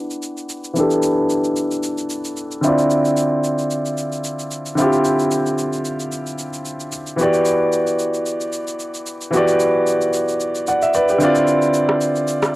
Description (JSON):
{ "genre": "amapiano", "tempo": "112 BPM", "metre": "4/4", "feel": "swing 55% on 16ths", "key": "E phrygian", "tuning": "A4 = 441 Hz", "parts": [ { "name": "clear grand piano", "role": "accompaniment", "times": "0.0-12.6 s", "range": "D3 to F#5", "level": "-17 LUFS", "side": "equal", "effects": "low-pass filter, cassette tape" }, { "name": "electronic shaker and rim click", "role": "drums", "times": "0.1-12.5 s", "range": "none", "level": "-27 LUFS", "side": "equal", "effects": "cassette tape" } ], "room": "light reverb", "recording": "home recording on cassette", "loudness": "-16 LUFS", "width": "side -18 dB against mid", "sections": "0.0-12.6 A section", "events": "filter sweep on grand piano 0.0-12.6", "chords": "0.0 Em9; 2.6 Dm9; 7.2 Em9; 11.2 Dm9" }